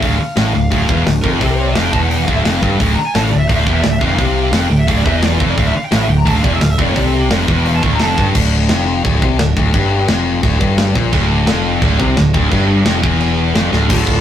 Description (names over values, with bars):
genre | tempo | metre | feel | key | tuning
heavy metal | 173 BPM | 4/4 | straight | D minor | A4 = 436 Hz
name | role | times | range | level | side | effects
bluesy overdriven lead guitar | melody | 0.0-8.3, 13.9-14.2 s | F4 to C#6 | -21 LUFS | right 1 dB | distortion
scooped high-gain guitar | riff | 0.0-8.3, 11.1-13.9 s | D2 to C3 | -19 LUFS | right 4 dB | distortion
tight distorted guitar | riff | 0.0-14.2 s | D2 to D3 | -17 LUFS | left 4 dB | distortion
picked electric bass | bass | 0.0-14.2 s | D1 to C2 | -17 LUFS | right 1 dB | none
tight metal drum kit | drums | 0.0-14.2 s | china cymbal, crash cymbal, hi-hat, kick drum, snare drum | -18 LUFS | equal | none
high-gain lead guitar | second line | 13.9-14.2 s | F4 | -24 LUFS | equal | distortion
room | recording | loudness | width
moderate studio reverb, RT60 0.6 s | rough rehearsal-room recording, tube saturation | -12 LUFS | side -10 dB against mid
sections
0.0-8.3 A section; 8.3-13.9 B section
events
lead electric guitar solo 0.0-8.3; drum fill 13.7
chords
0.0 Dm